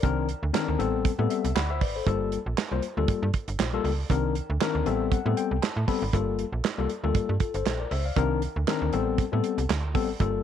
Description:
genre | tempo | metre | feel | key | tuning
early-eighties boogie funk | 118 BPM | 4/4 | swing 56% on 16ths | unclear | A4 = 440 Hz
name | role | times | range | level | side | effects
tine electric piano | accompaniment | 0.0-10.4 s | Eb3 to B5 | -28 LUFS | left 9 dB | overdrive
slap-like FM bass | bass | 0.0-10.4 s | G1 to A2 | -28 LUFS | right 1 dB | none
damped 70s drum kit | drums | 0.0-10.3 s | handclaps, hi-hat, kick drum, snare drum | -28 LUFS | right 4 dB | none
room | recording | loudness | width
moderate spring reverb, RT60 1.5 s, small room ambience | 1960s-style stereo | -24 LUFS | side -9 dB against mid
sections
0.0-10.4 A section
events
tine electric piano fill 1.0-2.1, 4.6-6.1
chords
0.0 Cm9; 0.8 Am9; 2.1 Gm9; 4.1 Cm9; 4.9 Am9; 6.1 Gm9; 8.2 Cm9; 8.9 Am9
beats
| 0.03 0.54 1.05 1.56 | 2.07 2.58 3.08 3.59 | 4.10 4.61 5.12 5.63 | 6.13 6.64 7.15 7.66 | 8.17 8.68 9.19 9.69 | 10.20

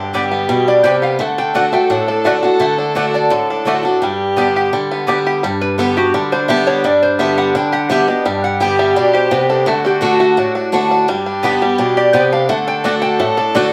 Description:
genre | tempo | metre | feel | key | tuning
bluegrass | 170 BPM | 4/4 | straight | G major | A4 = 440 Hz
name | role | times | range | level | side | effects
bluegrass banjo | melody | 0.0-13.7 s | D3 to G4 | -23 LUFS | equal | none
dark fiddle | second line | 0.0-13.7 s | D4 to A4 | -22 LUFS | equal | none
picked swing-style acoustic guitar | accompaniment | 0.0-13.7 s | G2 to G4 | -19 LUFS | equal | none
mandolin | stabs | 0.1-5.2, 11.4-13.6 s | A3 to G5 | -22 LUFS | equal | none
lap resonator guitar | melody | 0.7-13.7 s | F#4 to G5 | -19 LUFS | equal | none
room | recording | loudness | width
wet studio ambience, RT60 0.5 s | heard from further back in the room | -15 LUFS | mono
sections
0.0-5.4 A section; 5.4-13.7 A section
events
none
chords
0.0 G; 1.2 D; 4.0 G; 9.7 D; 11.1 G; 12.5 D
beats
0.14 0.49 0.85 | 1.20 1.55 1.90 2.26 | 2.61 2.96 3.31 3.67 | 4.02 4.37 4.72 5.08 | 5.43 5.78 6.14 6.49 | 6.84 7.20 7.55 7.90 | 8.26 8.61 8.96 9.31 | 9.67 10.02 10.38 10.73 | 11.08 11.44 11.79 12.14 | 12.49 12.85 13.20 13.55

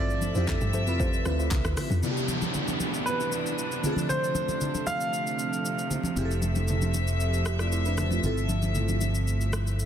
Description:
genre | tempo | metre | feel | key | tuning
amapiano | 116 BPM | 4/4 | straight | unclear | A4 = 440 Hz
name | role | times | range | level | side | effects
clear baby grand piano | melody | 0.0-5.9 s | B4 to F5 | -31 LUFS | right 2 dB | digital delay
crystalline FM electric piano | accompaniment | 0.0-9.9 s | C3 to E5 | -33 LUFS | equal | chorus, phaser
warm studio string section | sustained chords | 0.0-9.9 s | C3 to E5 | -33 LUFS | right 1 dB | none
deep mellow chord stab | stabs | 0.0-1.5 s | F4 to E5 | -38 LUFS | left 2 dB | chorus, digital delay
deep log drum bass | bass | 0.0-2.0 s | C2 to G2 | -28 LUFS | equal | none
deep house drum kit | drums | 0.1-9.9 s | handclaps, hi-hat, kick drum, rim click, shaker | -33 LUFS | equal | none
congas | percussion | 0.2-9.7 s | none | -34 LUFS | equal | none
downlifter | sound effects | 2.0-6.2 s | none | -34 LUFS | equal | none
fingered electric bass | bass | 6.2-9.9 s | F1 to G1 | -26 LUFS | equal | none
room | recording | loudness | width
light reverb, digital ambience | dense, heavily limited modern master | -25 LUFS | side -9 dB against mid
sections
0.0-2.0 A section; 2.0-9.9 B section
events
drop 0.0-2.0; kick muted 9.3-9.9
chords
0.0 G13sus4; 2.0 Cmaj9; 3.8 Dm7; 6.2 Fmaj7; 8.2 G13sus4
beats
0.48 0.99 1.51 | 2.03 2.55 3.06 3.58 | 4.10 4.62 5.13 5.65 | 6.17 6.68 7.20 7.72 | 8.24 8.75 9.27 9.79

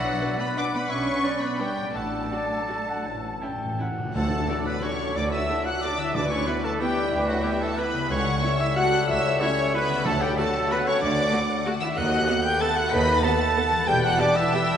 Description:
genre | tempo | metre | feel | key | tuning
classical, orchestral ballroom waltz | 154-202 BPM | 3/4 | rubato | D major | A4 = 441 Hz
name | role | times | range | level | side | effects
warm symphonic violin section | melody | 0.0-14.8 s | F#5 to B6 | -32 LUFS | left 2 dB | none
clear studio violin section | second line | 0.0-14.8 s | A4 to D6 | -34 LUFS | left 3 dB | none
flute section | second line | 0.0-14.8 s | F#4 to D6 | -32 LUFS | left 2 dB | none
warm clarinet | second line | 0.0-14.8 s | A4 to A5 | -34 LUFS | equal | none
warm oboe | second line | 0.0-14.8 s | F#4 to B5 | -33 LUFS | right 1 dB | none
mellow French horn section | sustained chords | 0.0-14.8 s | E3 to B4 | -31 LUFS | left 1 dB | none
concert harp | arpeggios | 0.0-14.8 s | A2 to B4 | -34 LUFS | left 6 dB | none
warm trumpet | stabs | 0.0-14.8 s | F#4 to B5 | -29 LUFS | right 2 dB | none
warm symphonic cello section | bass | 0.0-14.1 s | C#2 to D4 | -32 LUFS | right 1 dB | none
warm symphonic double bass section | bass | 0.0-14.1 s | E1 to D#2 | -32 LUFS | right 2 dB | none
clear studio viola section | accompaniment | 0.2-14.6 s | A3 to B4 | -36 LUFS | right 2 dB | none
cymbal swell and tam-tam | percussion | 1.9-5.4 s | none | -42 LUFS | left 1 dB | none
timpani | percussion | 3.1-6.6, 10.1-10.5 s | A2 to D3 | -35 LUFS | equal | none
mellow bassoon | accompaniment | 4.2-14.8 s | E3 to A3 | -32 LUFS | right 1 dB | none
room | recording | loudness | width
wet church reverb, RT60 3.3 s | recorded in a church or concert hall, nothing above 10.9 kHz | -22 LUFS | side -8 dB against mid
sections
0.0-4.1 A section; 4.1-14.8 B section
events
timpani fill 3.1-4.1; band accent 4.1-4.5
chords
0.0 Bm; 1.9 D/A; 3.1 A; 4.1 D; 6.1 Em7/D; 8.1 A7/C#; 10.1 D; 12.0 B7/D#; 13.9 Em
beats
0.22 0.58 | 0.90 1.23 1.59 | 1.95 2.31 2.69 | 3.06 3.42 3.80 | 4.15 4.48 4.83 | 5.16 5.49 5.83 | 6.15 6.48 6.81 | 7.13 7.46 7.79 | 8.11 8.44 8.77 | 9.09 9.41 9.74 | 10.06 10.38 10.71 | 11.02 11.33 11.66 | 11.97 12.29 12.61 | 12.92 13.24 13.57 | 13.88 14.20 14.54

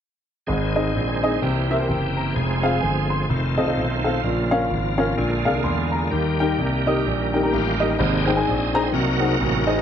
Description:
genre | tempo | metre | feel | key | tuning
uptempo gospel | 128 BPM | 4/4 | swing 61% on 8ths | Ab major | A4 = 440 Hz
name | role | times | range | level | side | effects
warm upright piano | accompaniment | 0.5-9.8 s | Ab2 to C6 | -23 LUFS | left 2 dB | none
bright tonewheel organ | sustained chords | 0.5-9.8 s | C3 to C5 | -24 LUFS | right 2 dB | slow rotary speaker, chorus vibrato
warm concert grand piano | bass | 0.5-9.8 s | F1 to Fb2 | -24 LUFS | equal | none
room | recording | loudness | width
light reverb, small room ambience | none | -19 LUFS | side -8 dB against mid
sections
0.5-8.0 A section; 8.0-9.8 B section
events
tonewheel organ solo 8.0-9.8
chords
0.5 Ab; 1.4 C7; 2.4 Fm; 3.3 F7; 4.2 Bbm; 5.2 Bb7; 6.1 Eb; 8.0 Abmaj7; 8.9 Ab7/C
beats
| 0.48 0.95 1.42 1.89 | 2.36 2.83 3.29 3.77 | 4.24 4.70 5.17 5.64 | 6.11 6.58 7.05 7.52 | 7.99 8.46 8.93 9.39

